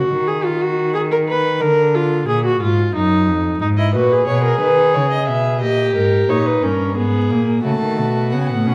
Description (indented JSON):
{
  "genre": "classical, baroque-style fugue for string quartet",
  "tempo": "90 BPM",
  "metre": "3/4",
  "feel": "straight",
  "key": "G# minor",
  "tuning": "A4 = 441 Hz",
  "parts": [
    { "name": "clear viola", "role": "accompaniment", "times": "0.0-8.7 s", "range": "A3 to B4", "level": "-20 LUFS", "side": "equal", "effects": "none" },
    { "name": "rich cello", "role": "bass", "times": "0.1-8.7 s", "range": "E#2 to D#3", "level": "-22 LUFS", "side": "equal", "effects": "none" },
    { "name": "warm violin", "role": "second line", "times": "3.8-8.7 s", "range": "F#4 to E5", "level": "-22 LUFS", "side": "equal", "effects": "none" },
    { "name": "warm violin", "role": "melody", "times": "7.6-8.7 s", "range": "F#5 to A5", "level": "-29 LUFS", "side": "equal", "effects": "none" }
  ],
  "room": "wet recital hall reverb, RT60 1.4 s",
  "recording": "dark, warm production, vinyl crackle",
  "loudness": "-17 LUFS",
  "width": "mono",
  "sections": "0.0-7.6 A section; 7.6-8.7 B section",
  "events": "none",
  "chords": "0.0 D#m; 0.9 G#m/D# (rootless); 1.6 A#7/D; 2.9 D#m/F#; 3.6 G#m; 5.0 B69; 5.6 D#7; 7.0 G#m; 7.6 D#m7b5"
}